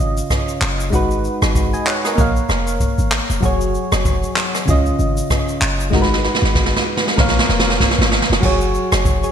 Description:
afrobeats; 96 BPM; 4/4; swing 58% on 16ths; F# major; A4 = 440 Hz
soft electric-piano-like synth keys; accompaniment; 0.0-9.3 s; C#3 to G#5; -20 LUFS; equal; chorus
clean 808-style bass; bass; 0.0-9.2 s; E#1 to C#2; -20 LUFS; equal
jazz brush drum kit; drums; 0.2-9.3 s; crash cymbal, handclaps, kick drum, rim click, shaker, snare drum; -18 LUFS; equal; vintage 12-bit sampler grit, gated reverb
light reverb; bright 1980s-style digital production; -14 LUFS; side -8 dB against mid
0.0-8.4 A section
drum fill 5.9-8.4
0.0 C#add9; 0.9 G#m7; 2.2 A#m; 3.4 F#sus2; 4.7 C#add9; 5.9 G#m7; 7.2 A#m; 8.4 F#sus2

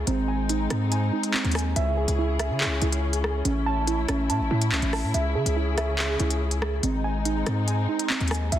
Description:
hip hop, drill; 142 BPM; 4/4; half-time; C# harmonic minor; A4 = 442 Hz
muted studio string section; sustained chords; 0.0-8.6 s; C#3 to G#4; -31 LUFS; left 4 dB
warbly dusty pluck; arpeggios; 0.0-8.6 s; B#3 to A5; -28 LUFS; right 5 dB; chorus, low-pass filter, digital delay
hard-hitting 808-style bass; bass; 0.0-8.6 s; G#1 to C#3; -26 LUFS; left 1 dB
drill drum kit; drums; 0.1-8.6 s; handclaps, hi-hat, rim click; -29 LUFS; left 1 dB; vintage 12-bit sampler grit
light reverb, digital ambience; dense, heavily limited modern master; -22 LUFS; side -11 dB against mid
0.0-8.6 A section
0.1 G#; 1.8 C#m; 3.5 A; 5.1 C#m; 6.8 G#

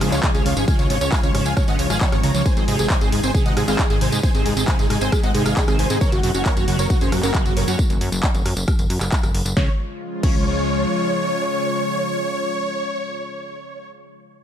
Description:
uplifting trance; 135 BPM; 4/4; straight; Db major; A4 = 440 Hz
dense compressed supersaw; melody; 0.0-13.9 s; F4 to Bb5; -25 LUFS; equal; sidechain pumping, dub echo
plucky unison lead; second line; 0.0-13.9 s; Gb4 to Bb5; -32 LUFS; right 1 dB
lush unison pad; sustained chords; 0.0-13.9 s; Db3 to F4; -27 LUFS; left 1 dB; chorus, vintage 12-bit sampler grit, sidechain pumping
liquid acid bass; arpeggios; 0.0-10.4 s; C2 to Db4; -27 LUFS; right 3 dB; analog chorus, sidechain pumping, tape echo
plucky analog bass; bass; 0.0-10.9 s; Gb1 to Ab2; -23 LUFS; equal; sidechain pumping
punchy analog drum machine; drums; 0.0-10.4 s; crash cymbal, handclaps, hi-hat, rim click, snare drum, tambourine; -26 LUFS; equal
electronic kick drum; drums; 0.2-10.4 s; -19 LUFS; equal
little or no reverb; -17 LUFS; side -10 dB against mid
0.0-9.6 A section; 9.6-13.1 B section
drop 0.0-9.6
0.0 Db; 2.5 Ab; 6.0 Gb; 9.6 Db

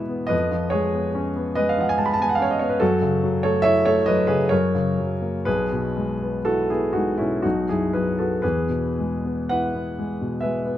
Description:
classical, romantic nocturne for solo piano; 52-75 BPM; 3/4; rubato; E major; A4 = 440 Hz
warm grand piano; solo; 0.0-10.8 s; B1 to B5; -20 LUFS; equal
moderate recital hall reverb, RT60 1.6 s; close, detailed microphones; -20 LUFS; side -12 dB against mid
0.0-10.8 A section
0.3 C#7/E#; 2.8 F#m7; 4.5 F#; 5.5 E/B; 7.4 B; 8.4 E

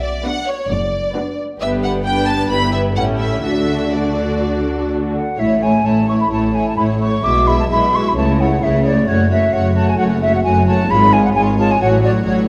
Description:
quick classical-period movement for symphony orchestra; 131 BPM; 4/4; rubato; D major, A major from 5.4 s; A4 = 439 Hz
warm studio violin section; melody; 0.0-12.5 s; C#5 to B5; -26 LUFS; equal
rich studio double bass section; bass; 0.0-12.5 s; F#1 to D2; -23 LUFS; equal
warm studio cello section; bass; 0.0-12.5 s; F#2 to D3; -23 LUFS; equal
dark studio violin section; second line; 0.2-12.5 s; E4 to B4; -27 LUFS; equal
dark studio viola section; accompaniment; 0.2-12.5 s; F#3 to F#4; -23 LUFS; equal
concert flute; second line; 5.1-12.3 s; C#5 to D6; -20 LUFS; equal
wet recital hall reverb, RT60 1.4 s; -16 LUFS; mono
0.0-5.4 A section; 5.4-12.5 B section
0.0 Bm; 1.6 G; 2.5 Em/G; 3.0 A7; 3.5 D; 5.4 A; 7.2 E/B; 8.2 A/C#; 9.1 F#m; 10.9 C#/G#; 11.8 F#m/A

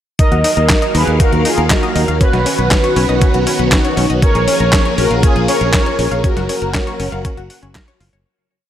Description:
italo disco; 119 BPM; 4/4; straight; Eb minor; A4 = 440 Hz
mellow synth brass; melody; 0.2-8.0 s; D#4 to Eb5; -18 LUFS; equal; chorus, digital delay
phased string machine; sustained chords; 0.2-8.2 s; Eb3 to F5; -20 LUFS; equal; ensemble chorus, phaser
analog pluck; arpeggios; 0.2-8.2 s; C#4 to Gb5; -23 LUFS; left 2 dB; chorus, digital delay
clean 12-bit digital drum machine; drums; 0.2-8.2 s; handclaps, hi-hat, snare drum; -19 LUFS; equal; overdrive
electronic kick drum; drums; 0.2-7.9 s; -14 LUFS; equal; overdrive
fingered electric bass; bass; 0.3-8.2 s; Gb1 to Eb2; -18 LUFS; equal
light reverb, digital ambience; -11 LUFS; side -11 dB against mid
0.2-8.3 chorus
fade-out 5.6-8.3
0.2 Ebmadd9; 2.2 Badd9; 4.2 Bbm7; 6.2 Gbmaj7

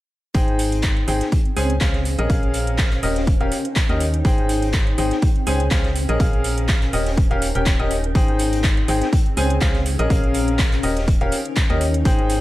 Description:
piano house; 123 BPM; 4/4; swing 54% on 16ths; Ab major; A4 = 438 Hz
bright grand piano; riff; 0.3-12.4 s; Db4 to Ab5; -24 LUFS; left 1 dB; sidechain pumping, tape echo
organ-like FM bass; bass; 0.3-12.4 s; Eb1 to Eb2; -23 LUFS; equal; sidechain pumping
electronic kick drum; drums; 0.3-12.2 s; -19 LUFS; equal
house drum kit; drums; 0.3-12.4 s; handclaps, hi-hat; -27 LUFS; right 1 dB
raw garage drum kit; drums; 0.3-12.4 s; hi-hat, snare drum; -36 LUFS; equal; sidechain pumping on hats, high-pass filter on hats, high-pass filter on snare, high-pass filter on room
granular cloud pad; texture; 0.7-12.4 s; C4 to G5; -28 LUFS; equal; built-in reverb, sidechain pumping
light reverb, small room ambience; -17 LUFS; side -16 dB against mid
0.3-12.4 A section
0.3 Abmaj7; 1.3 Dbmaj7; 2.1 Bbm7; 3.0 Eb7; 4.2 Abmaj7; 5.2 Dbmaj7; 6.0 Bbm7; 6.9 Eb7; 8.2 Abmaj7; 9.1 Dbmaj7; 9.9 Bbm7; 10.8 Eb7

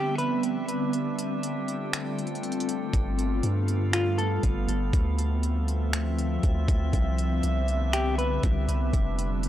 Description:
hip hop, atmospheric cloud-rap; 120 BPM; 4/4; half-time; C major; A4 = 440 Hz
semi-hollow electric guitar; melody; 0.0-0.4, 3.9-4.4, 7.9-8.4 s; F4 to B4; -32 LUFS; equal; wide subtle chorus, analog delay
ethereal airy pad; sustained chords; 0.0-9.5 s; D3 to E5; -30 LUFS; equal; ensemble chorus, built-in reverb, phaser, sidechain pumping
drifting glass-harmonics texture; texture; 0.0-9.5 s; B3 to G5; -36 LUFS; equal; chorus, built-in reverb
trap drum kit; drums; 0.2-9.5 s; finger snaps, hi-hat, kick drum; -28 LUFS; equal
long sustained 808-style bass; bass; 2.9-9.5 s; F1 to G2; -26 LUFS; equal
little or no reverb; dry, gritty hardware recording, transformer saturation; -24 LUFS; side -12 dB against mid
0.0-9.5 A section
break 0.0-2.9
0.0 Cmaj9; 0.9 F69; 2.9 G9; 4.9 Dm9; 6.9 Cmaj9; 8.9 F69

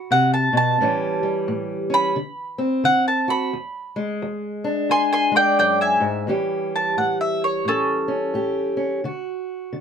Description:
acoustic country blues, solo or duo; 88 BPM; 4/4; swing 61% on 8ths; A mixolydian; A4 = 440 Hz
mandolin; melody; 0.0-9.0 s; C#4 to C6; -19 LUFS; right 1 dB
fingerpicked steel-string acoustic guitar; accompaniment; 0.0-9.8 s; E2 to G4; -23 LUFS; equal
moderate booth ambience, RT60 0.3 s; close, detailed microphones; -19 LUFS; side -7 dB against mid
0.0-6.3 A section; 6.3-9.8 B section
mandolin solo 0.0-6.3
0.0 D7 (rootless); 0.8 A7; 2.2 D7; 3.5 E7; 6.3 A7; 9.0 D

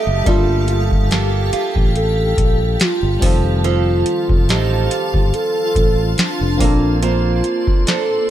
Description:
contemporary R&B; 71 BPM; 4/4; swing 54% on 16ths; G minor; A4 = 440 Hz
hollow clarinet-like synth lead; melody; 0.0-8.3 s; D4 to A4; -20 LUFS; right 1 dB; chorus, dub echo
FM electric piano; accompaniment; 0.0-8.3 s; Eb3 to A4; -26 LUFS; left 2 dB; chorus, dub echo
granular cloud pad; sustained chords; 0.0-8.3 s; Bb3 to Eb6; -25 LUFS; equal; built-in reverb
picked acoustic archtop guitar; arpeggios; 0.0-8.3 s; F3 to C5; -24 LUFS; right 11 dB; dub echo
fingered electric bass; bass; 0.1-7.4 s; F1 to Bb1; -18 LUFS; equal
booming analog drum machine; drums; 0.3-8.1 s; hi-hat, kick drum, snare drum; -17 LUFS; equal; vintage 12-bit sampler grit
digital ambience; echo-heavy mix; -14 LUFS; side -12 dB against mid
0.0-8.3 A section
0.3 Gm9; 3.2 F7; 6.6 Bbmaj9

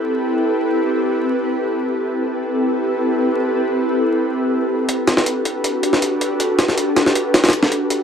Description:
drum and bass, jungle; 159 BPM; 4/4; straight; A dorian; A4 = 437 Hz
ethereal airy pad; sustained chords; 0.0-8.0 s; C4 to B4; -18 LUFS; equal; ensemble chorus, built-in reverb
jungle sampler-style drum kit; drums; 4.9-8.0 s; hi-hat, snare drum; -16 LUFS; equal
wet digital room reverb, RT60 0.9 s; vinyl crackle; -16 LUFS; side -7 dB against mid
0.0-8.0 A section
0.0 Am9; 4.9 Gmaj7

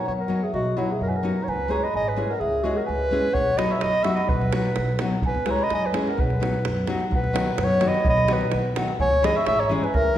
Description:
balkan folk, Balkan wedding band; 128 BPM; 2/4; straight; B major; A4 = 442 Hz
warm clarinet; melody; 0.0-10.2 s; E4 to E5; -24 LUFS; equal
celesta; second line; 0.0-10.2 s; C#5 to C#6; -29 LUFS; right 2 dB
upright bass; bass; 0.1-10.2 s; G#1 to F#2; -28 LUFS; equal
nylon-string guitar; accompaniment; 0.3-10.2 s; D#3 to G#4; -27 LUFS; left 2 dB
davul; percussion; 3.3-10.0 s; -28 LUFS; right 1 dB
wet recital hall reverb, RT60 1.5 s; recorded in a church or concert hall; -20 LUFS; side -11 dB against mid
0.0-7.1 A section; 7.1-10.2 A section
0.0 B; 1.5 C#m; 3.4 B; 5.2 C#m; 6.2 B; 9.0 C#m

